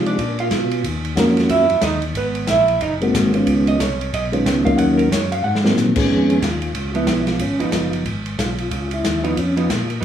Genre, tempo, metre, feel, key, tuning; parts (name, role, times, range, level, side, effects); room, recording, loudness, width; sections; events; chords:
soul jazz organ trio; 183 BPM; 4/4; swing 61% on 8ths; Db mixolydian; A4 = 440 Hz
percussive tonewheel organ; melody; 0.0-9.9 s; Eb3 to Ab4; -19 LUFS; equal; slow rotary speaker, chorus vibrato
vintage hollow-body jazz guitar; accompaniment; 0.0-10.0 s; F3 to Gb5; -20 LUFS; right 3 dB
tonewheel organ; bass; 0.0-10.0 s; Gb1 to C3; -24 LUFS; equal; overdrive, chorus vibrato, slow rotary speaker
open jazz drum kit; drums; 0.1-10.0 s; crash cymbal, hi-hat, kick drum, ride cymbal, snare drum; -24 LUFS; left 1 dB
moderate large studio reverb, RT60 0.9 s; small room reverb; -16 LUFS; side -9 dB against mid
0.0-6.1 A section; 6.1-10.0 A section
hollow-body jazz guitar solo 0.0-6.1; drum fill 5.4-5.8; tonewheel organ solo 6.1-10.0
0.2 Bb; 0.8 Ebm7; 2.1 Ab9; 3.5 Db9; 4.8 Ebm7; 5.4 Ab13; 6.1 Db9